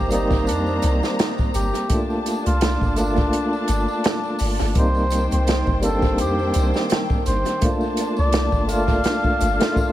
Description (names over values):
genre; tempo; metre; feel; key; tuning
trip hop; 84 BPM; 4/4; swing 56% on 16ths; C dorian; A4 = 440 Hz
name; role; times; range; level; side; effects
trumpet with cup mute; melody; 0.0-9.9 s; D4 to F5; -26 LUFS; equal; tape echo
bell-like tine electric piano; accompaniment; 0.0-9.9 s; G3 to D5; -24 LUFS; equal; tremolo, tape echo
clear studio string section; sustained chords; 0.0-9.9 s; Eb3 to Bb5; -28 LUFS; equal; vintage 12-bit sampler grit
soft 808-style bass; bass; 0.0-9.6 s; G1 to F2; -22 LUFS; equal; none
open jazz drum kit; drums; 0.1-9.9 s; hi-hat, kick drum, snare drum; -23 LUFS; equal; tape echo
tambourine; percussion; 0.1-9.9 s; none; -42 LUFS; left 2 dB; none
room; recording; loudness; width
light reverb, studio reverb; echo-heavy mix; -18 LUFS; side -13 dB against mid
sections
0.0-9.9 A section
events
none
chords
0.0 Cm7; 1.9 Bbmaj7; 4.8 Cm7; 7.6 Bbmaj7